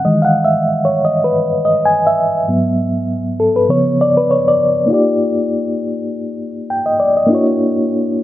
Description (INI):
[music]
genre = soul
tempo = 99 BPM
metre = 4/4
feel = swing 54% on 16ths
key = unclear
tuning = A4 = 440 Hz
[part]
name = mellow reed electric piano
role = solo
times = 0.0-8.2 s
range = G#2 to G#5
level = -12 LUFS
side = equal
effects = fast tremolo
[sound]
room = light reverb, digital ambience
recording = none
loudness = -12 LUFS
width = side -14 dB against mid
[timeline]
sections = 0.0-4.9 A section; 4.9-8.2 B section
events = reed electric piano solo 0.0-4.9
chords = 0.1 Emaj7; 2.5 G#m7; 3.7 C#7; 4.9 D#maj9; 7.3 F#7b13